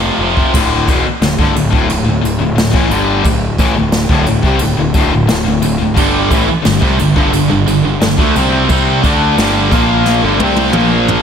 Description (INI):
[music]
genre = heavy metal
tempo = 88 BPM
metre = 4/4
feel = straight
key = D minor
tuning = A4 = 440 Hz
[part]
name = heavy high-gain guitar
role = riff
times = 0.0-0.5, 6.0-11.2 s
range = F2 to D4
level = -17 LUFS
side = right 10 dB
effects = distortion, slapback echo
[part]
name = tight distorted guitar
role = riff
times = 0.0-11.2 s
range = D2 to D4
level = -16 LUFS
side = left 7 dB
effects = distortion
[part]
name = fuzz picked electric bass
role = bass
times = 0.0-11.2 s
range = D1 to D2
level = -18 LUFS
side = equal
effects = overdrive
[part]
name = jazz brush drum kit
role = drums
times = 0.4-11.2 s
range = crash cymbal, kick drum, snare drum, toms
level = -16 LUFS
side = equal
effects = none
[part]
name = sludgy distorted guitar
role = riff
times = 0.6-11.2 s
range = D2 to D4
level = -16 LUFS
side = right 1 dB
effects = overdrive
[sound]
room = moderate lush hall reverb, RT60 2.5 s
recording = big arena sound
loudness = -10 LUFS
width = side -7 dB against mid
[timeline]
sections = 0.5-11.2 A section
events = drum fill 10.1-11.2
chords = 0.0 F5; 0.5 D5; 6.0 G5